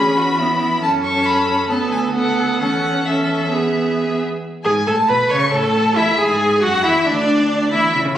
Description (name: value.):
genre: quick classical-period movement for string quartet.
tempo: 136 BPM.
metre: 4/4.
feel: straight.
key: unclear.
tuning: A4 = 440 Hz.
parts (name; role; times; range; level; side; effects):
rich violin; melody; 0.0-7.9 s; D5 to C#6; -20 LUFS; left 2 dB; none.
rich violin; second line; 0.0-8.2 s; D4 to C#5; -21 LUFS; left 1 dB; none.
rich viola; accompaniment; 0.0-8.1 s; B3 to C#5; -19 LUFS; right 1 dB; none.
rich cello; bass; 0.0-8.1 s; D2 to C#3; -23 LUFS; right 2 dB; none.
room: wet recital hall reverb, RT60 1.5 s.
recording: recorded on a phone in the room, studio reverb, compression.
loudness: -15 LUFS.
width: side -11 dB against mid.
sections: 0.0-4.4 A section; 4.4-8.2 B section.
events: none.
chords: 0.0 E; 0.8 F#m; 1.7 Bm7/D; 2.6 A/E; 3.5 E; 4.4 G#m; 5.3 A; 6.2 E7.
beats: 0.39 | 0.82 1.26 1.70 2.15 | 2.60 3.07 3.53 3.98 | 4.43 4.87 5.31 5.75 | 6.19 6.63 7.07 7.51 | 7.94.